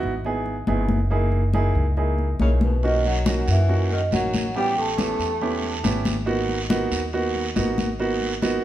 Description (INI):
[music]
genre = Afro-Cuban jazz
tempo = 139 BPM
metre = 4/4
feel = straight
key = G# minor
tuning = A4 = 442 Hz
[part]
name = warm grand piano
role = accompaniment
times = 0.0-8.6 s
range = A#3 to G#4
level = -25 LUFS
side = right 2 dB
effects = none
[part]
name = upright bass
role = bass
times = 0.0-8.6 s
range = F#1 to F#2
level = -24 LUFS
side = equal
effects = none
[part]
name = congas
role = percussion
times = 0.0-8.6 s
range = none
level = -27 LUFS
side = left 3 dB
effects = none
[part]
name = vibraphone with soft mallets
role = melody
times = 2.4-6.0 s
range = B4 to A5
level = -27 LUFS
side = right 2 dB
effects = none
[part]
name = mellow baritone saxophone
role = second line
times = 2.4-6.0 s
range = B2 to A3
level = -30 LUFS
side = left 3 dB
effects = none
[part]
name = guiro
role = percussion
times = 2.8-8.6 s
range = none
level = -34 LUFS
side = right 4 dB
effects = none
[sound]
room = moderate large studio reverb, RT60 1.1 s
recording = heard from further back in the room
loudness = -20 LUFS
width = side -13 dB against mid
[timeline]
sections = 0.0-8.6 A section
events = none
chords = 0.0 C#m9 (rootless); 1.1 F#13; 2.8 Bmaj9; 4.6 A9; 6.3 G#m9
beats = 0.24 0.67 | 1.10 1.54 1.97 2.40 | 2.83 3.26 3.69 4.12 | 4.55 4.98 5.41 5.84 | 6.28 6.71 7.14 7.57 | 8.00 8.43